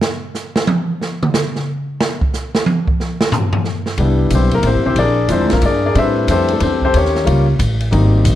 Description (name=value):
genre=jazz piano trio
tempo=182 BPM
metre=3/4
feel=swing 64% on 8ths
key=unclear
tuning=A4 = 440 Hz
part: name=open jazz drum kit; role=drums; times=0.0-8.3 s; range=hi-hat, kick drum, ride cymbal, snare drum, toms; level=-19 LUFS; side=right 1 dB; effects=none
part: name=warm concert grand piano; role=melody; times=4.0-8.4 s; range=F3 to E5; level=-15 LUFS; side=left 2 dB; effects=none
part: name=upright bass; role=bass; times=4.0-8.4 s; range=E1 to A2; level=-15 LUFS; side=equal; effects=none
room=light reverb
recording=none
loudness=-13 LUFS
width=side -12 dB against mid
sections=0.0-4.0 A section; 4.0-8.4 B section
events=drum solo 0.0-4.0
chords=0.0 N.C.; 4.0 Cmaj9; 5.0 Bb7#11; 6.0 Am11; 6.9 Eb7